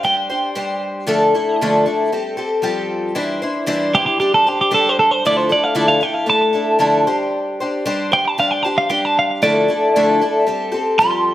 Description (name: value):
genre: rock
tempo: 115 BPM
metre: 4/4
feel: straight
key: D minor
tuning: A4 = 440 Hz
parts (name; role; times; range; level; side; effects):
- twelve-string electric guitar; melody; 0.0-11.3 s; G4 to C6; -16 LUFS; right 1 dB; slapback echo
- picked twelve-string acoustic guitar; accompaniment; 0.0-11.3 s; D3 to C5; -17 LUFS; left 2 dB; none
room: moderate echo chamber reverb, RT60 1.3 s, small room reverb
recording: none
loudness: -14 LUFS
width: side -14 dB against mid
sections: 0.0-11.3 A section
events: clean electric guitar solo 0.0-11.3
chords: 0.0 Gsus4; 1.1 Dmadd9; 2.1 Fadd9; 3.2 Cadd9/E; 4.2 Gsus4; 5.2 Dmadd9; 7.1 Gsus4; 9.4 Dmadd9; 10.5 Fadd9